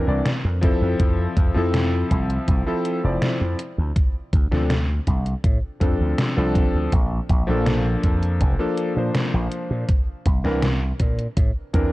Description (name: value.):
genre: vaporwave.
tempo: 81 BPM.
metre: 4/4.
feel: straight.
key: D minor.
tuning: A4 = 440 Hz.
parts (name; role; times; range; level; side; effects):
warm electric grand piano; accompaniment; 0.0-11.9 s; E3 to D5; -24 LUFS; left 1 dB; wide subtle chorus, analog delay.
slap bass with an envelope filter; bass; 0.0-11.9 s; F1 to Bb2; -22 LUFS; equal; tube saturation.
detuned 8-bit digital drum machine; drums; 0.3-11.9 s; hi-hat, snare drum; -25 LUFS; equal; none.
electronic kick drum; drums; 0.6-11.9 s; none; -20 LUFS; equal; none.
room: digital ambience.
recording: dark, warm production, cassette tape.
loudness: -19 LUFS.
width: side -18 dB against mid.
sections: 0.0-11.9 A section.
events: none.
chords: 0.0 Cadd9; 0.6 Fmaj7; 3.6 Dm7; 6.9 Bbmaj7; 9.9 C9.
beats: 0.26 | 1.00 1.74 2.48 3.22 | 3.96 4.70 5.44 6.18 | 6.93 7.67 8.41 9.15 | 9.89 10.63 11.37.